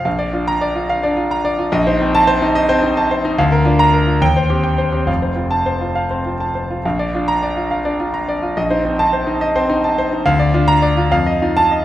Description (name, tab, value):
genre	classical, virtuoso piano study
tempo	66-73 BPM (dotted quarters)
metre	6/8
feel	rubato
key	Bb major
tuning	A4 = 441 Hz
part	warm concert grand piano	solo	0.0-11.8 s	F1 to Bb5	-14 LUFS	equal	none
room	wet recital hall reverb, RT60 1.5 s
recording	none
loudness	-14 LUFS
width	side -13 dB against mid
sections	0.1-11.8 A section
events	none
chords	0.1 Bb; 1.7 Adim/Bb; 3.4 Bb/D; 4.2 Cm/Eb; 5.1 F; 6.8 Bb; 8.6 Adim/Bb; 10.3 Bb/D; 11.1 F7